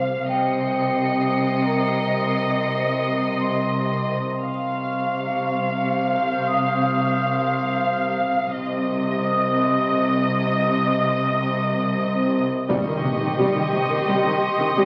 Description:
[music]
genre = cinematic, suspense film score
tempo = 87 BPM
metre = 3/4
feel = straight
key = C phrygian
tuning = A4 = 440 Hz
[part]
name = muted symphonic violin section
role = melody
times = 0.0-14.9 s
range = Eb5 to F5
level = -27 LUFS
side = equal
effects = none
[part]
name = muted symphonic cello section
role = bass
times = 0.0-14.8 s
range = C3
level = -28 LUFS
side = equal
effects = none
[part]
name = muted symphonic double bass section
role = bass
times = 0.0-14.8 s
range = C2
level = -30 LUFS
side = equal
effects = none
[part]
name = vibraphone with medium mallets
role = texture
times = 0.0-14.9 s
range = Bb4 to Eb6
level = -29 LUFS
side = equal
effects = none
[part]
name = muted symphonic violin section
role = texture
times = 0.3-8.2, 12.7-14.9 s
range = C6 to Db7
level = -36 LUFS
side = equal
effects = none
[part]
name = muted symphonic violin section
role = second line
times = 12.7-14.9 s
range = G4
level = -28 LUFS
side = equal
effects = none
[part]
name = muted symphonic viola section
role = accompaniment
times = 12.7-14.9 s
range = C3 to G3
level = -25 LUFS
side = equal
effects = none
[part]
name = taiko ensemble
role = drums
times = 12.7-14.0 s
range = none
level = -38 LUFS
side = equal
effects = none
[part]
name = impact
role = sound effects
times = 12.7-14.8 s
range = none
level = -31 LUFS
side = equal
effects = none
[sound]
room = wet scoring stage reverb, RT60 1.6 s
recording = very old 78 rpm record, vinyl crackle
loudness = -22 LUFS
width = mono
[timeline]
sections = 0.0-12.7 A section; 12.7-14.9 B section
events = impact 12.7-14.8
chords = 0.3 Cm

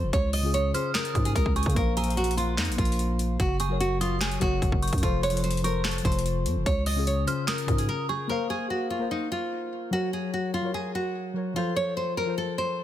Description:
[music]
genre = hip hop, trap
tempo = 147 BPM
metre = 4/4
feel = half-time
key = Bb minor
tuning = A4 = 440 Hz
[part]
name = nylon-string guitar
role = melody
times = 0.0-12.8 s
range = Eb4 to Eb5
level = -29 LUFS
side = equal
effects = tape echo
[part]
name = muted felt-like synth keys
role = accompaniment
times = 0.0-12.8 s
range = Db3 to F5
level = -31 LUFS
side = left 4 dB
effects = chorus
[part]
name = growling 808-style bass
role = bass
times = 0.0-7.9 s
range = F1 to Db3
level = -27 LUFS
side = equal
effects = none
[part]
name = trap drum kit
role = drums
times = 0.1-7.9 s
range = handclaps, hi-hat, kick drum, snare drum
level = -28 LUFS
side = equal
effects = overdrive
[part]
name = dark detuned synth bell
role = second line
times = 0.3-8.3 s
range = Bb5 to F6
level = -35 LUFS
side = right 4 dB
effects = chorus, tape echo
[sound]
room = digital ambience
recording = dense, heavily limited modern master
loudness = -24 LUFS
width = side -12 dB against mid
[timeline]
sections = 0.0-8.3 A section; 8.3-12.8 B section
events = break 7.9-8.3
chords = 0.1 Db; 1.8 Bbsus2; 3.4 Gb; 5.0 F; 6.7 Db; 8.3 Bbsus2; 9.9 Gb; 11.6 F

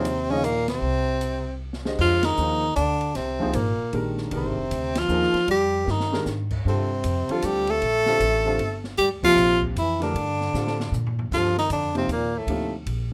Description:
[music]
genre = modal jazz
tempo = 154 BPM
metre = 3/4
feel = swing 64% on 8ths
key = unclear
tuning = A4 = 440 Hz
[part]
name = warm tenor saxophone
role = melody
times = 0.0-12.8 s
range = A3 to A4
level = -25 LUFS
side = equal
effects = none
[part]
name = mellow bass clarinet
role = second line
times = 0.0-12.7 s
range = A2 to A3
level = -34 LUFS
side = equal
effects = none
[part]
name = warm baby grand piano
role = accompaniment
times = 0.0-12.7 s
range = C3 to E5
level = -31 LUFS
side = equal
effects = none
[part]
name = upright bass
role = bass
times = 0.0-13.1 s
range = F1 to Bb2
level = -31 LUFS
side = equal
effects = none
[part]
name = open jazz drum kit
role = drums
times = 0.1-13.0 s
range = crash cymbal, hi-hat, kick drum, ride cymbal, snare drum, toms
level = -38 LUFS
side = equal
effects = none
[sound]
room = moderate club reverb, RT60 0.6 s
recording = none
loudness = -24 LUFS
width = mono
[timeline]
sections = 0.0-2.0 A section; 2.0-11.3 B section; 11.3-13.1 C section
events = band accent 0.6, 2.2, 4.9, 9.2; drum fill 1.6-2.0, 5.9-6.3, 10.5-11.3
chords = 0.0 Eb7sus2; 0.8 N.C.; 2.0 Fm9; 6.7 Gm9; 11.3 Gm11

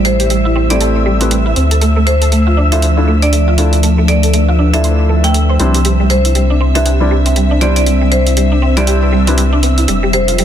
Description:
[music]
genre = deep house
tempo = 119 BPM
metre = 4/4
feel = swing 59% on 16ths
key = unclear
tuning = A4 = 440 Hz
[part]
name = marimba with hard mallets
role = melody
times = 0.0-10.3 s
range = C5 to G5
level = -19 LUFS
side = equal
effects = tape echo
[part]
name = warbly tape-like pad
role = sustained chords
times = 0.0-10.4 s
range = F3 to E5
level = -20 LUFS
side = equal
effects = chorus, built-in reverb
[part]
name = warm sub bass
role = bass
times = 0.0-10.4 s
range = F1 to D2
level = -12 LUFS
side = equal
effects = none
[part]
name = electronic hi-hat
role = drums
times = 0.0-10.4 s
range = none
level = -20 LUFS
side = right 1 dB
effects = overdrive
[part]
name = soft string machine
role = texture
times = 0.0-10.4 s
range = E5 to E6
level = -23 LUFS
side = equal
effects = phaser, ensemble chorus
[part]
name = mallet-like synth pluck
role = arpeggios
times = 0.1-10.4 s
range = G3 to D5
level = -18 LUFS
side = right 2 dB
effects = ensemble chorus, cassette tape, digital delay
[part]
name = felt-muted upright piano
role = stabs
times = 0.7-9.4 s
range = G3 to E5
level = -20 LUFS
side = left 1 dB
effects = low-pass filter, tape echo
[part]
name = riser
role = sound effects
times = 10.2-10.4 s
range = none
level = -28 LUFS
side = right 3 dB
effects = none
[sound]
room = light reverb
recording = dense, heavily limited modern master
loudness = -10 LUFS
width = side -9 dB against mid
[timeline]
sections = 0.0-10.4 A section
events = filter sweep on ambient pad 0.0-10.4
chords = 0.0 Am7; 1.6 Dm7; 5.6 Cadd9; 9.9 Fmaj9

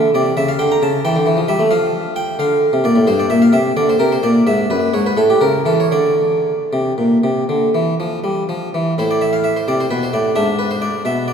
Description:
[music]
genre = classical, baroque-style suite movement for harpsichord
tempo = 74-91 BPM (dotted quarters)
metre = 12/8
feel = rubato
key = unclear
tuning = A4 = 439 Hz
[part]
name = harpsichord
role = solo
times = 0.0-11.3 s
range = F#2 to Bb5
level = -14 LUFS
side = equal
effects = none
[sound]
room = wet church reverb, RT60 3.3 s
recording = heard from further back in the room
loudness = -14 LUFS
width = side -7 dB against mid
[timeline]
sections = 0.0-9.0 A section; 9.0-11.3 A section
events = none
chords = 0.4 A7/C#; 1.7 Dm/F; 3.1 Gmadd11 (rootless); 4.5 F#9sus4; 5.2 A; 5.9 N.C.; 9.0 Am; 10.4 G#dim

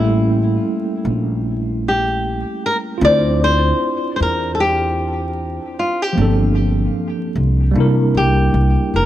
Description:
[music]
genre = lo-fi hip hop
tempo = 76 BPM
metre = 4/4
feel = swing 58% on 16ths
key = unclear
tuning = A4 = 440 Hz
[part]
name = flamenco guitar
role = melody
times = 0.0-9.1 s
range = E4 to D5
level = -19 LUFS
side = left 1 dB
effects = low-pass filter, analog delay
[part]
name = tine electric piano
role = accompaniment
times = 0.0-9.1 s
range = F3 to C5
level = -20 LUFS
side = right 1 dB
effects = overdrive, fast stereo tremolo, cassette tape, low-pass filter
[part]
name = upright bass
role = bass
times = 0.0-9.1 s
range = F1 to C3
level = -18 LUFS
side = equal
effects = none
[sound]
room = light reverb, small room ambience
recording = vinyl crackle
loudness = -15 LUFS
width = side -12 dB against mid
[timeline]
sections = 0.0-9.1 A section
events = none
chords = 0.0 A7b9; 3.0 Dm9; 6.2 Gm11; 7.8 C9

